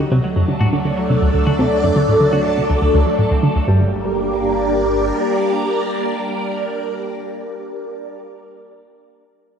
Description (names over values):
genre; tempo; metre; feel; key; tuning
ambient, sequencer-driven space music; 122 BPM; 4/4; straight; G minor; A4 = 440 Hz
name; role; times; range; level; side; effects
phased string machine; sustained chords; 0.0-8.1 s; F#3 to D5; -18 LUFS; equal; ensemble chorus, phaser
analog pluck; riff; 0.0-3.9 s; D2 to F#3; -17 LUFS; equal; chorus, tape echo
round analog bass; bass; 0.0-5.1 s; G1 to D2; -32 LUFS; equal; tube saturation
semi-hollow electric guitar; arpeggios; 0.1-3.9 s; F#2 to F#4; -33 LUFS; left 1 dB; auto-pan, tape echo
room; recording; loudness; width
wet plate reverb, RT60 2.9 s; dark, warm production; -15 LUFS; side -7 dB against mid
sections
0.0-3.7 A section; 3.7-7.6 B section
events
fade-out on analog synth bass 0.0-3.7; filter sweep on synth arpeggio sound 0.0-3.7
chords
0.0 D; 3.7 Gm